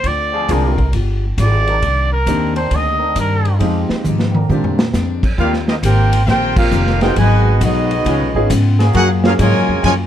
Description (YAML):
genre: jazz, big band swing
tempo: 135 BPM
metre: 4/4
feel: swing 66% on 8ths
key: Eb major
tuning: A4 = 440 Hz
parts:
  - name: warm trumpet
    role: melody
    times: 0.0-3.6 s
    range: Bb4 to Eb5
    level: -19 LUFS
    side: right 2 dB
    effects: none
  - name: picked steel-string acoustic guitar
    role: accompaniment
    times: 0.0-10.1 s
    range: Ab2 to Ab4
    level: -22 LUFS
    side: left 8 dB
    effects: none
  - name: upright bass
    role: bass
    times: 0.0-10.1 s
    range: F1 to Bb2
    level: -16 LUFS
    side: equal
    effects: none
  - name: vintage drum kit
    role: drums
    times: 0.0-10.0 s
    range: crash cymbal, hi-hat, kick drum, ride cymbal, snare drum, toms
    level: -20 LUFS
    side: right 1 dB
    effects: none
  - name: mellow trombone section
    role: sustained chords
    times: 0.3-9.4 s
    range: Db3 to Bb4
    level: -24 LUFS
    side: left 1 dB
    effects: none
  - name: warm baby grand piano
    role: accompaniment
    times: 0.5-9.8 s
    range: Gb3 to Ab4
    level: -21 LUFS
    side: right 2 dB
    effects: none
  - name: clear trumpet section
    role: melody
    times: 5.4-9.9 s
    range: Cb4 to Ab5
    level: -18 LUFS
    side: equal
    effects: none
  - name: warm trombone section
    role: second line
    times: 5.4-9.9 s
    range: Cb3 to G4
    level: -21 LUFS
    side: right 3 dB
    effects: none
room: light reverb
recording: dark, warm production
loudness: -13 LUFS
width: side -10 dB against mid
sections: 0.0-5.4 A section; 5.4-10.1 B section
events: trumpet solo 0.0-5.4; drum fill 4.0-4.9; band accent 6.5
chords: 0.0 Dm7b5; 0.9 G7b9; 1.8 Cm9; 3.6 Fm9; 4.5 Bb9; 5.4 Eb69; 7.2 Abm7; 8.1 Db7; 9.0 Gbmaj9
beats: | 0.04 0.48 0.93 1.38 | 1.82 2.27 2.71 3.16 | 3.60 4.05 4.50 4.94 | 5.39 5.83 6.28 6.72 | 7.17 7.62 8.06 8.51 | 8.95 9.40 9.84